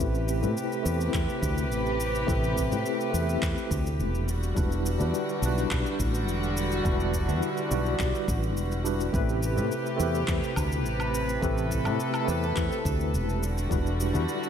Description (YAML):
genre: sunset chillout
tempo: 105 BPM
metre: 4/4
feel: straight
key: A minor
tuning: A4 = 439 Hz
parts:
  - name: tine electric piano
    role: accompaniment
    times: 0.0-14.5 s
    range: G3 to B4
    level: -30 LUFS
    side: left 1 dB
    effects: medium stereo tremolo, auto-pan, low-pass filter, analog delay
  - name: warm chamber string section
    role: sustained chords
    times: 0.0-14.5 s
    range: C3 to B4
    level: -32 LUFS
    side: equal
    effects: none
  - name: woody fretless electric bass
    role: bass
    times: 0.0-14.3 s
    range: E1 to A2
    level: -28 LUFS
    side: equal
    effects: none
  - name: electronic shaker, handclaps and woodblock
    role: drums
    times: 0.0-14.5 s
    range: none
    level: -38 LUFS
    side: left 1 dB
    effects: none
  - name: electronic kick drum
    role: drums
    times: 1.1-13.8 s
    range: none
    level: -31 LUFS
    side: equal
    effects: none
room: moderate lush hall reverb, RT60 2.3 s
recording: dreamy mix soaked in reverb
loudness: -25 LUFS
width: side -8 dB against mid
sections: 0.0-14.5 A section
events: filter sweep on tine electric piano 0.0-14.5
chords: 0.0 Am9; 4.3 Em9; 9.1 Am9; 13.4 Em9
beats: | 0.00 0.57 1.14 1.71 | 2.28 2.85 3.42 4.00 | 4.57 5.14 5.71 6.28 | 6.85 7.42 8.00 8.57 | 9.14 9.71 10.28 10.85 | 11.42 12.00 12.57 13.14 | 13.71 14.28